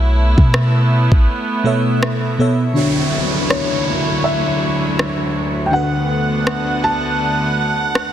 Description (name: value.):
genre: contemporary R&B.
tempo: 81 BPM.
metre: 4/4.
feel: swing 58% on 16ths.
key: unclear.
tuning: A4 = 440 Hz.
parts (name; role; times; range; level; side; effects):
FM electric piano with soft pad layer; accompaniment; 0.0-8.1 s; B2 to A5; -20 LUFS; equal; chorus.
warm chamber string section; sustained chords; 0.0-8.1 s; D2 to F#5; -20 LUFS; right 2 dB; none.
clean 808-style bass; bass; 0.0-1.3 s; A1 to B2; -13 LUFS; equal; none.
smooth R&B drum kit; drums; 0.4-8.1 s; kick drum, rim click; -18 LUFS; equal; soft clipping on snare.
downlifter; sound effects; 2.8-8.1 s; none; -24 LUFS; equal; none.
dark concert grand piano; melody; 3.5-8.1 s; C#5 to A5; -22 LUFS; left 1 dB; tape echo.
room: light reverb.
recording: dense, heavily limited modern master.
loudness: -14 LUFS.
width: side -10 dB against mid.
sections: 0.0-2.8 A section; 2.8-8.1 B section.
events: break 1.3-2.8.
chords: 0.0 B9sus4; 2.8 Dmaj7; 5.7 D6.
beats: 0.53 1.27 2.02 | 2.76 3.50 4.24 4.98 | 5.72 6.46 7.20 7.94.